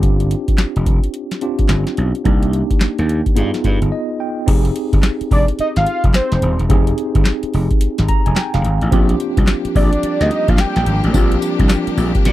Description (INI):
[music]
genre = R&B, new jack swing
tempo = 108 BPM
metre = 4/4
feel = swing 63% on 16ths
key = unclear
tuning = A4 = 440 Hz
[part]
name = tine electric piano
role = accompaniment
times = 0.0-12.3 s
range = Bb3 to Bb5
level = -21 LUFS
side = right 1 dB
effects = medium stereo tremolo
[part]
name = gritty slap bass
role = bass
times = 0.0-12.3 s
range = Eb1 to Bb2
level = -17 LUFS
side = equal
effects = overdrive
[part]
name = booming analog drum machine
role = drums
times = 0.0-12.3 s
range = crash cymbal, handclaps, hi-hat, kick drum, snare drum, tambourine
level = -16 LUFS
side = equal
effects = none
[part]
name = fat analog lead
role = melody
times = 5.3-11.0 s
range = C5 to G5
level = -19 LUFS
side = right 1 dB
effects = chorus
[part]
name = clear studio string section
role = sustained chords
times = 8.9-12.3 s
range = F3 to G4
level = -23 LUFS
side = left 2 dB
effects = none
[sound]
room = little or no reverb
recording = dry, close 1970s-style studio recording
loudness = -14 LUFS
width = side -15 dB against mid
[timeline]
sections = 0.0-4.5 A section; 4.5-12.3 B section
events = tine electric piano fill 3.6-4.5, 7.8-8.9; break 3.9-4.5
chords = 0.0 G7sus4; 2.3 Cm7; 3.4 G7b9b13; 4.5 Fm7; 8.9 Bb6